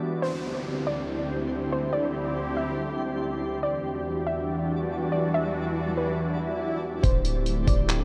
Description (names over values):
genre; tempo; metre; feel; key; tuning
hip hop, atmospheric cloud-rap; 141 BPM; 4/4; half-time; unclear; A4 = 437 Hz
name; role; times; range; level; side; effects
sweeping resonant pad; sustained chords; 0.0-8.0 s; D2 to G4; -30 LUFS; equal; chorus, sidechain pumping
twinkling granular texture; texture; 0.0-8.0 s; G3 to D5; -40 LUFS; equal; built-in reverb, lush chorus
warbly dusty pluck; melody; 0.2-8.0 s; B4 to E5; -34 LUFS; equal; chorus, tape echo
downlifter and swell; sound effects; 0.2-7.0 s; none; -41 LUFS; equal; none
clean 808-style bass; bass; 7.0-8.0 s; D1; -28 LUFS; equal; none
trip hop sampler-style drum kit; drums; 7.0-8.0 s; handclaps, hi-hat, kick drum; -26 LUFS; equal; none
room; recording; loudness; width
wet huge ambient reverb, RT60 8.4 s; dreamy mix soaked in reverb; -28 LUFS; mono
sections
0.2-7.0 A section; 7.0-8.0 B section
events
break 0.0; swell 6.1-7.0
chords
0.2 D7sus4; 3.6 Em7; 7.0 D7sus4